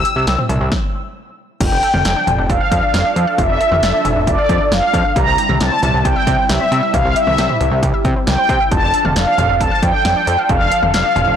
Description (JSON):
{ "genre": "synth-pop", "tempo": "135 BPM", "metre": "4/4", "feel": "straight", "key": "unclear", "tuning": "A4 = 440 Hz", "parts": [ { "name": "mellow synth brass", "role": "melody", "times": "0.0-11.4 s", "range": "D5 to E6", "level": "-16 LUFS", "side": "equal", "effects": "chorus, digital delay" }, { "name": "phased analog pad", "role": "sustained chords", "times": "0.0-11.4 s", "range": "C3 to A4", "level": "-24 LUFS", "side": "equal", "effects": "phaser, chorus" }, { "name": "analog pluck", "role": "arpeggios", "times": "0.0-11.4 s", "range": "E3 to F5", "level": "-27 LUFS", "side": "right 2 dB", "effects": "chorus, digital delay" }, { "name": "fat analog bass", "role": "bass", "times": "0.0-11.4 s", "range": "F1 to C3", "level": "-18 LUFS", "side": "equal", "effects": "tube saturation" }, { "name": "punchy analog drum machine", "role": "drums", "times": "0.1-11.3 s", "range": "cowbell, crash cymbal, hi-hat, kick drum, snare drum, toms", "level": "-19 LUFS", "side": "equal", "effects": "none" } ], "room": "moderate plate reverb, RT60 1.7 s, digital ambience", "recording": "blown-out, overdriven recording, overdrive", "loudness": "-13 LUFS", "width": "side -8 dB against mid", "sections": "0.0-1.6 A section; 1.6-11.4 B section", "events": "stop 0.7-1.6", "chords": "0.0 C; 1.6 F6; 5.2 C; 8.7 F6" }